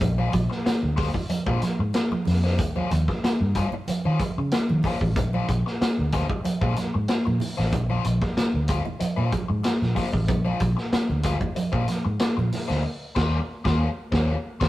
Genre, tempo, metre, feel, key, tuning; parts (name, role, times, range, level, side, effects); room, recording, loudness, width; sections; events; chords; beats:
funk; 94 BPM; 4/4; straight; Bb mixolydian; A4 = 444 Hz
crunchy overdriven guitar; accompaniment; 0.0-14.7 s; G3 to C5; -32 LUFS; left 5 dB; wah
vintage muted fingered electric bass; bass; 0.0-14.7 s; A1 to Eb3; -25 LUFS; equal
vintage drum kit; drums; 0.0-14.7 s; crash cymbal, hi-hat, kick drum, snare drum; -26 LUFS; equal
congas; percussion; 0.0-12.7 s; -31 LUFS; right 4 dB
light reverb; rough rehearsal-room recording, tube saturation; -22 LUFS; side -16 dB against mid
0.0-14.7 A section
band accent 12.8-14.7
0.0 Bb9; 2.6 Eb13; 5.2 Bb9; 12.8 Eb13
| 0.01 0.66 1.30 1.95 | 2.59 3.23 3.88 4.52 | 5.16 5.80 6.44 7.08 | 7.73 8.37 9.01 9.65 | 10.29 10.93 11.56 12.20 | 12.84 13.48 14.12